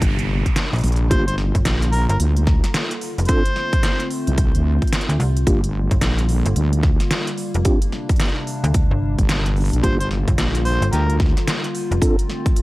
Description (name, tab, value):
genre	glitch hop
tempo	110 BPM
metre	4/4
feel	swing 62% on 16ths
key	G minor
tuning	A4 = 441 Hz
part	warbly tape-like pad	sustained chords	0.0-12.6 s	C3 to F4	-28 LUFS	left 1 dB	chorus, built-in reverb, sidechain pumping
part	wobble bass	bass	0.0-11.3 s	G1 to D2	-19 LUFS	equal	chorus
part	dubstep drum kit	drums	0.0-12.6 s	hi-hat, snare drum	-25 LUFS	equal	small room ambience
part	electronic kick drum	drums	0.0-12.5 s	none	-19 LUFS	equal	small room ambience
part	noise sweep	sound effects	0.0-1.1 s	none	-31 LUFS	right 4 dB	none
part	slap-like FM bass	bass	0.7-12.0 s	F1 to D2	-19 LUFS	equal	none
part	overdriven harmonica	melody	1.1-4.1, 9.8-11.1 s	G4 to C5	-27 LUFS	equal	tape echo
part	mellow tonewheel organ	stabs	1.1-12.2 s	Bb3 to A4	-25 LUFS	right 1 dB	chorus vibrato, fast rotary speaker, vintage 12-bit sampler grit, sidechain pumping, tape echo
room	little or no reverb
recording	dry, gritty hardware recording, vinyl crackle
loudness	-16 LUFS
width	side -19 dB against mid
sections	0.0-12.6 A section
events	noise sweep 0.0-1.1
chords	0.0 Bb69; 1.1 Gm7; 3.3 Dm7; 5.5 Gm7; 7.7 Bb69; 9.8 Gm7; 12.0 Dm7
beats	0.02 0.56 | 1.11 1.65 2.20 2.74 | 3.29 3.83 4.38 4.92 | 5.47 6.02 6.56 7.11 | 7.65 8.20 8.74 9.29 | 9.83 10.38 10.93 11.47 | 12.02 12.56